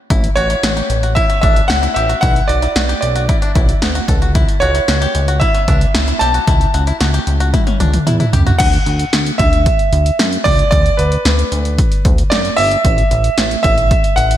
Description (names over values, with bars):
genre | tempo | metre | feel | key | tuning
synth-pop | 113 BPM | 4/4 | straight | D major | A4 = 441 Hz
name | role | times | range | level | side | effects
bluegrass banjo | arpeggios | 0.1-8.6 s | C#4 to A4 | -23 LUFS | left 3 dB | slapback echo, ping-pong delay
chorused synth bass | bass | 0.1-14.4 s | G1 to F#2 | -16 LUFS | equal | none
punchy analog drum machine | drums | 0.1-14.4 s | crash cymbal, hi-hat, kick drum, snare drum, toms | -15 LUFS | equal | none
clear concert grand piano | melody | 0.4-14.4 s | B4 to A5 | -17 LUFS | right 1 dB | slapback echo, ping-pong delay
room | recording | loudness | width
moderate lush hall reverb, RT60 2.1 s | big arena sound | -11 LUFS | side -12 dB against mid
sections
0.1-8.6 A section; 8.6-14.4 B section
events
drum fill 7.5-8.6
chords
0.1 A; 2.2 Bm; 4.1 A; 8.6 D5; 12.8 A5